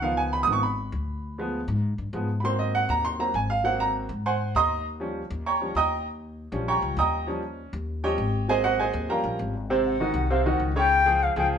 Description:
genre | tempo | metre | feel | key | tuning
Afro-Cuban jazz | 198 BPM | 4/4 | straight | Ab major | A4 = 441 Hz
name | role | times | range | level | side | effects
clear upright piano | accompaniment | 0.0-11.6 s | C3 to Eb6 | -25 LUFS | right 2 dB | none
upright bass | bass | 0.0-11.6 s | Ab1 to Ab2 | -29 LUFS | left 2 dB | none
bright bansuri | melody | 9.9-11.5 s | F5 to G5 | -23 LUFS | left 4 dB | none
room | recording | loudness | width
moderate large studio reverb, RT60 0.9 s | band playing live in one room, nothing above 11.0 kHz | -23 LUFS | side -7 dB against mid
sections
0.0-9.7 A section; 9.7-11.6 A section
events
upright piano solo 0.0-9.7; bansuri solo 9.7-11.6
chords
0.0 Db9; 1.2 Ddim7; 2.4 Ab9; 4.9 Eb9; 8.5 Ab9; 9.1 Eb9; 9.7 Ab7; 10.9 Db

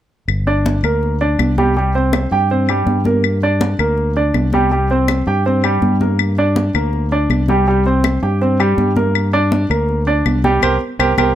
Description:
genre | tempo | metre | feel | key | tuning
Afro-Cuban jazz | 162 BPM | 4/4 | straight | G minor | A4 = 440 Hz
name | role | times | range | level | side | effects
fingered electric bass | bass | 0.3-11.3 s | G1 to G2 | -17 LUFS | equal | none
claves | percussion | 0.3-11.3 s | none | -20 LUFS | left 15 dB | none
congas | percussion | 0.3-11.3 s | none | -21 LUFS | equal | none
clear grand piano | accompaniment | 0.5-11.3 s | G3 to G5 | -16 LUFS | right 1 dB | none
room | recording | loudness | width
little or no reverb | close, detailed microphones | -13 LUFS | side -11 dB against mid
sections
0.3-11.3 A section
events
band accent 10.6-11.3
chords
0.3 Gm; 1.8 C5; 3.2 Gm; 4.7 C5; 6.2 Gm; 7.7 C5; 9.2 Gm; 10.6 C5

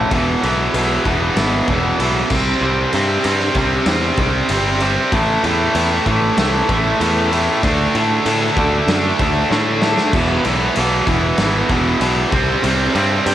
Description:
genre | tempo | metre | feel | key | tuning
hard rock | 96 BPM | 4/4 | straight | unclear | A4 = 441 Hz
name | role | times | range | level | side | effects
chorused pulse-width pad | sustained chords | 0.0-13.3 s | A3 to F#5 | -31 LUFS | equal | none
overdriven electric guitar | riff | 0.0-13.3 s | E2 to D4 | -18 LUFS | right 5 dB | cassette tape
tight distorted guitar | riff | 0.0-13.3 s | E2 to D4 | -20 LUFS | left 7 dB | distortion, cassette tape
modern bright picked electric bass | bass | 0.0-13.3 s | E1 to A2 | -21 LUFS | equal | none
raw garage drum kit | drums | 0.1-13.3 s | crash cymbal, kick drum, ride cymbal, snare drum | -22 LUFS | equal | cassette tape
room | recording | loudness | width
light reverb, small room ambience | home recording on cassette | -14 LUFS | side -12 dB against mid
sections
0.1-13.3 A section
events
drum fill 9.5-10.1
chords
0.1 E5; 2.3 C5; 5.1 A5; 7.6 D5; 10.1 E5; 12.3 C5

